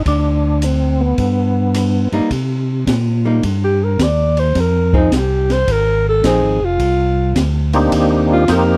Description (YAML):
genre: soul jazz organ trio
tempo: 107 BPM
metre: 4/4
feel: swing 68% on 8ths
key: C minor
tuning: A4 = 440 Hz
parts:
  - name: percussive tonewheel organ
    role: melody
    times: 0.0-2.1, 7.7-8.8 s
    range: Bb3 to G4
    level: -18 LUFS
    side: equal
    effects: slow rotary speaker, overdrive, chorus vibrato
  - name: tonewheel organ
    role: bass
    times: 0.1-8.8 s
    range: F1 to C3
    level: -19 LUFS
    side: equal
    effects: overdrive, chorus vibrato, slow rotary speaker
  - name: open jazz drum kit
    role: drums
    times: 0.1-8.7 s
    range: hi-hat, kick drum, ride cymbal, rim click, snare drum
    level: -25 LUFS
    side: equal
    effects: none
  - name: archtop guitar, miked and amplified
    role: accompaniment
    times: 2.1-6.6 s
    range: F3 to Ab4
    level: -20 LUFS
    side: equal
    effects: none
  - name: warm alto saxophone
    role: melody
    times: 3.6-8.8 s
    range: Eb4 to D5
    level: -19 LUFS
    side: equal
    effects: none
room: studio reverb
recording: dry, close 1970s-style studio recording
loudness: -15 LUFS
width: mono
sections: 0.0-2.3 A section; 2.3-8.8 B section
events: alto saxophone solo 2.3-8.8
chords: 0.1 Bm/D; 1.2 Gaug; 2.3 Cm7; 4.6 Fm7; 6.8 Cm7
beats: | 0.06 0.62 1.18 1.75 | 2.31 2.87 3.43 3.99 | 4.55 5.12 5.68 6.24 | 6.80 7.36 7.92 8.48